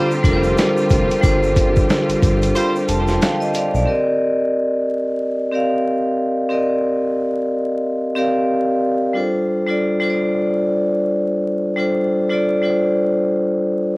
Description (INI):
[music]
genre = hip hop, boom-bap hip-hop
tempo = 91 BPM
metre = 4/4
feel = swing 60% on 16ths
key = C dorian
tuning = A4 = 438 Hz
[part]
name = vibraphone with hard mallets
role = accompaniment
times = 0.0-14.0 s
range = G3 to Bb5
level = -17 LUFS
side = equal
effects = cassette tape
[part]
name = muted studio string section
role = sustained chords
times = 0.0-3.8 s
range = D3 to G4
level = -24 LUFS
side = equal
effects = none
[part]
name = warm horn section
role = stabs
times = 0.0-2.8 s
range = G3 to C5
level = -25 LUFS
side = right 1 dB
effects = tape echo
[part]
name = egg shaker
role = percussion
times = 0.1-3.9 s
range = none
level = -39 LUFS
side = right 2 dB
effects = none
[part]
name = smooth gliding synth bass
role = bass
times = 0.2-3.9 s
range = F1 to B1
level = -21 LUFS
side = equal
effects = transformer saturation
[part]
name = dusty soul sampler-style drum kit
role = drums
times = 0.2-3.7 s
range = hi-hat, kick drum, snare drum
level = -18 LUFS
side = equal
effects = cassette tape
[sound]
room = moderate spring reverb, RT60 2.2 s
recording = home recording on cassette, vinyl crackle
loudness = -16 LUFS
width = side -25 dB against mid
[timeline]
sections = 0.0-3.9 A section; 3.9-14.0 B section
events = break 2.6-3.9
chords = 0.0 G7sus4; 3.9 Cm9; 9.1 G7sus4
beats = 0.58 | 1.24 1.90 2.56 3.21 | 3.87 4.53 5.19 5.85 | 6.51 7.17 7.83 8.49 | 9.15 9.81 10.47 11.13 | 11.79 12.45 13.11 13.76